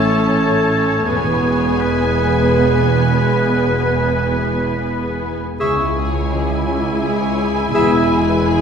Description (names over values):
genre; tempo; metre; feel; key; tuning
cinematic, emotional film score for orchestra; 77-85 BPM; 3/4; rubato; C# minor from 5.6 s; A4 = 439 Hz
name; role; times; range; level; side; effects
muted symphonic violin section; melody; 0.0-8.6 s; G#5 to A5; -27 LUFS; left 2 dB; none
clear clarinet; second line; 0.0-8.0 s; G#4 to A4; -25 LUFS; left 3 dB; none
clear oboe; second line; 0.0-8.0 s; B4 to E5; -24 LUFS; equal; none
muted symphonic violin section; second line; 0.0-8.6 s; B3 to C#5; -24 LUFS; equal; none
muted symphonic viola section; accompaniment; 0.0-8.6 s; B3 to E4; -25 LUFS; right 2 dB; none
mellow French horn section; sustained chords; 0.0-8.6 s; G#3 to E4; -21 LUFS; left 2 dB; none
concert harp; arpeggios; 0.0-8.6 s; E2 to E5; -25 LUFS; left 1 dB; none
muted symphonic cello section; bass; 0.0-8.6 s; C#2 to A2; -24 LUFS; right 2 dB; none
muted symphonic double bass section; bass; 0.0-8.6 s; E1 to C#2; -21 LUFS; right 3 dB; none
concert flute; second line; 5.6-8.1 s; B5 to C#6; -25 LUFS; equal; none
room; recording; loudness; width
wet recital hall reverb, RT60 1.6 s; recorded in a church or concert hall; -14 LUFS; side -7 dB against mid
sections
0.0-5.6 A section; 5.6-8.6 B section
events
none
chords
0.0 A; 1.1 E; 5.6 C#m; 7.7 E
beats
0.33 | 1.06 1.80 2.53 | 3.29 4.07 4.84 | 5.60 6.33 7.04 | 7.75 8.46